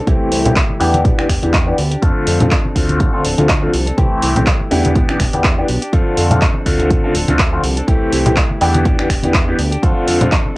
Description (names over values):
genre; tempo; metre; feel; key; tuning
filtered disco house; 123 BPM; 4/4; swing 56% on 16ths; C major; A4 = 440 Hz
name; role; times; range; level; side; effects
direct-recorded clean electric guitar; riff; 0.0-10.6 s; E3 to A4; -24 LUFS; equal; vintage 12-bit sampler grit, sidechain pumping, low-pass filter, cassette tape
bright grand piano; accompaniment; 0.1-10.3 s; D3 to G4; -17 LUFS; left 1 dB; phaser, sidechain pumping, low-pass filter, cassette tape
fat analog bass; bass; 0.1-10.4 s; D1 to F2; -19 LUFS; equal; sidechain pumping, low-pass filter
electronic kick drum; drums; 0.1-10.4 s; none; -16 LUFS; equal; cassette tape
punchy analog drum machine; drums; 0.1-10.4 s; finger snaps, handclaps, hi-hat; -20 LUFS; equal; sidechain pumping on hats, cassette tape, sidechain pumping on cymbals
egg shaker and congas; percussion; 0.1-10.5 s; none; -19 LUFS; left 1 dB; sidechain pumping on perc, low-pass filter on perc
room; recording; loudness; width
light reverb; home recording on cassette; -12 LUFS; side -20 dB against mid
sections
0.0-10.6 A section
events
filter sweep 0.0-10.6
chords
0.1 C6; 1.1 Em7; 2.0 F6; 2.8 Dm7; 4.0 C6; 5.0 Em7; 5.9 F6; 6.7 Dm7; 7.9 C6; 8.9 Em7; 9.8 F6